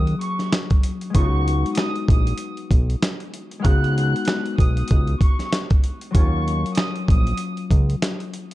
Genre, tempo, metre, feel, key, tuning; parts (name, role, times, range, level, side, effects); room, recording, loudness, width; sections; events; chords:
hip hop, boom-bap hip-hop; 96 BPM; 4/4; swing 58% on 16ths; A4 = 440 Hz
warm chamber violin section; melody; 0.0-7.6 s; Db6 to Gb6; -30 LUFS; right 1 dB; high-pass filter, low-pass filter, analog delay
concert harp; accompaniment; 0.0-8.5 s; Gb3 to Ab4; -28 LUFS; left 4 dB; cassette tape, high-pass filter, low-pass filter
fat analog bass; bass; 0.0-8.0 s; Bb1 to Eb2; -21 LUFS; equal
dusty soul sampler-style drum kit; drums; 0.1-8.5 s; handclaps, hi-hat, kick drum, snare drum; -19 LUFS; equal; vintage 12-bit sampler grit
digital ambience; dark, warm production; -18 LUFS; side -16 dB against mid
0.0-8.5 A section
0.0 Ebm7; 1.1 Db9sus4; 6.1 Ebm9